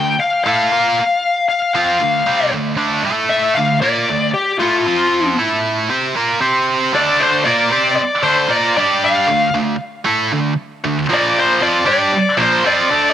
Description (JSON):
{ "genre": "rock", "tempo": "116 BPM", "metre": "4/4", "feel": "straight", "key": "D minor", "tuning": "A4 = 439 Hz", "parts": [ { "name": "bluesy overdriven lead guitar", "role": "melody", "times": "0.0-13.1 s", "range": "F4 to G5", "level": "-16 LUFS", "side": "left 3 dB", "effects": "distortion, analog delay" }, { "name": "heavy high-gain guitar", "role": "riff", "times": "0.0-13.1 s", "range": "Bb2 to C5", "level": "-16 LUFS", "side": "right 2 dB", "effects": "distortion, cassette tape" } ], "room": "light reverb", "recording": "home recording on cassette", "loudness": "-13 LUFS", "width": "side -10 dB against mid", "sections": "0.0-6.9 A section; 6.9-13.1 B section", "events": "none", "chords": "0.0 Dm; 3.1 A5; 3.6 Dm; 4.9 F5; 5.4 A5; 5.9 Bbsus2; 6.4 C5; 6.9 Dm; 8.8 G5; 9.3 D5; 11.1 Bb5" }